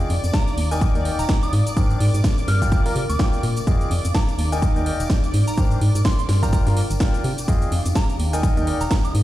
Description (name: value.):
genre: piano house.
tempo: 126 BPM.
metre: 4/4.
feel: swing 58% on 16ths.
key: F dorian.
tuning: A4 = 438 Hz.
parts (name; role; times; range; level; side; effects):
analog string pad; sustained chords; 0.0-9.2 s; D5 to D6; -34 LUFS; left 2 dB; ensemble chorus, sidechain pumping.
bright grand piano; riff; 0.0-8.8 s; D4 to Bb5; -30 LUFS; left 2 dB; sidechain pumping, low-pass filter, dub echo.
organ-like FM bass; bass; 0.0-9.2 s; Eb1 to C3; -20 LUFS; equal; tube saturation, sidechain pumping.
house drum kit; drums; 0.0-9.2 s; hi-hat, shaker, snare drum; -29 LUFS; equal; none.
tambourine; percussion; 0.0-9.1 s; none; -41 LUFS; equal; none.
warbly tape-like pad; texture; 0.0-9.2 s; C4 to G5; -32 LUFS; right 1 dB; chorus, built-in reverb, sidechain pumping.
soft synth bell; melody; 0.3-9.1 s; Ab5 to F6; -31 LUFS; right 1 dB; chorus, phaser, dub echo.
electronic kick drum; drums; 0.3-9.0 s; none; -20 LUFS; equal; none.
room: little or no reverb.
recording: played on a big sound system in a bare room, stone room reverb.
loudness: -18 LUFS.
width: side -14 dB against mid.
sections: 0.0-9.2 A section.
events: none.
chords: 0.0 Fm9; 0.8 Ebmaj7; 1.5 Abmaj9#11; 2.7 Gm7; 3.7 Fm9; 4.6 Ebmaj7; 5.3 Abmaj9#11; 6.5 Gm7; 7.5 Fm9; 8.4 Ebmaj7.